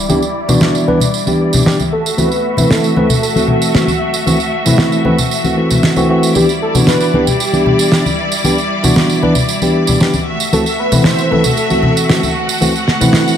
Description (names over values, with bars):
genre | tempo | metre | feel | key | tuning
nu-disco, nu disco | 115 BPM | 4/4 | straight | unclear | A4 = 440 Hz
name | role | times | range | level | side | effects
rich symphonic string section | sustained chords | 0.0-13.4 s | G3 to F#5 | -19 LUFS | left 1 dB | low-pass filter
tine electric piano | accompaniment | 0.1-13.4 s | E3 to B4 | -14 LUFS | equal | vintage 12-bit sampler grit, dub echo
tambourine and snare drum | drums | 0.1-13.4 s | none | -17 LUFS | right 2 dB | studio reverb
congas | percussion | 0.1-13.1 s | none | -18 LUFS | left 2 dB | none
wide unison lead | melody | 1.9-12.4 s | F#4 to C5 | -19 LUFS | equal | ping-pong delay
room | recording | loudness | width
moderate plate reverb, RT60 1.5 s, small room ambience | none | -11 LUFS | side -9 dB against mid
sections
0.0-13.4 A section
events
filter sweep on string section 0.0-13.4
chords
0.0 Em7; 1.9 F#m7b5; 6.4 Em7; 10.3 F#m7b5